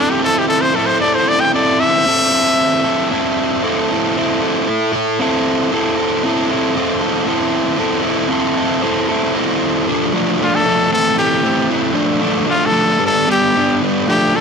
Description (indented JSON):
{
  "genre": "rock",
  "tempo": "115 BPM",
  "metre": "4/4",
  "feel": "straight",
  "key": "unclear",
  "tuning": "A4 = 442 Hz",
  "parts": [
    { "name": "brilliant trumpet", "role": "melody", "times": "0.0-3.3, 10.4-14.4 s", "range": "D4 to G5", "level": "-16 LUFS", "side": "left 2 dB", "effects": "tape echo" },
    { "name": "fuzz guitar", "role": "riff", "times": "0.0-14.4 s", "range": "E3 to A4", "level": "-15 LUFS", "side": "right 1 dB", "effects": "distortion" }
  ],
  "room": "light reverb",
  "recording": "none",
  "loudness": "-13 LUFS",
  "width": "side -6 dB against mid",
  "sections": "0.0-5.7 A section; 5.7-9.9 B section; 9.9-14.4 C section",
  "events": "trumpet solo 0.0-5.7",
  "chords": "0.0 Am; 9.9 Dm; 10.9 Am7; 12.0 Dm; 13.0 G"
}